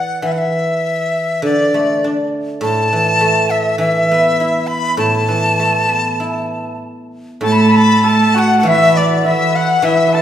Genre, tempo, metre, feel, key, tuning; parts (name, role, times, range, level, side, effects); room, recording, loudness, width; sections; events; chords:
chinese traditional, Chinese chamber ensemble; 100 BPM; 4/4; rubato; A zhi mode; A4 = 438 Hz
breathy dizi; melody; 0.0-10.2 s; D5 to B5; -15 LUFS; left 2 dB
guzheng; accompaniment; 0.0-10.2 s; A2 to E4; -18 LUFS; right 2 dB
clear erhu; second line; 7.4-10.2 s; D5 to B5; -19 LUFS; left 4 dB
hammered dulcimer; second line; 7.4-10.2 s; E4 to B4; -19 LUFS; right 3 dB
rich cello; second line; 7.4-10.2 s; E3 to A3; -14 LUFS; right 2 dB
wet recital hall reverb, RT60 1.5 s; recorded in a church or concert hall; -12 LUFS; side -10 dB against mid
0.0-7.4 A section; 7.4-10.2 B section